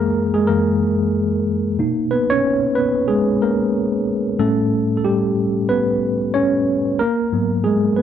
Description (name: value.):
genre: R&B.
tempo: 92 BPM.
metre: 4/4.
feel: swing 58% on 16ths.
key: B major.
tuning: A4 = 439 Hz.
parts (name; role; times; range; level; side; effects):
mellow tine electric piano; solo; 0.0-8.0 s; F#2 to C#5; -16 LUFS; equal; medium stereo tremolo.
room: moderate echo chamber reverb, RT60 1.9 s.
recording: dark, warm production.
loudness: -16 LUFS.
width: side -9 dB against mid.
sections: 0.0-1.8 A section; 1.8-8.0 B section.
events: tine electric piano solo 0.0-1.8, 1.8-8.0.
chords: 0.0 F#9; 1.8 Bmaj9; 4.4 A9; 7.0 G#m9.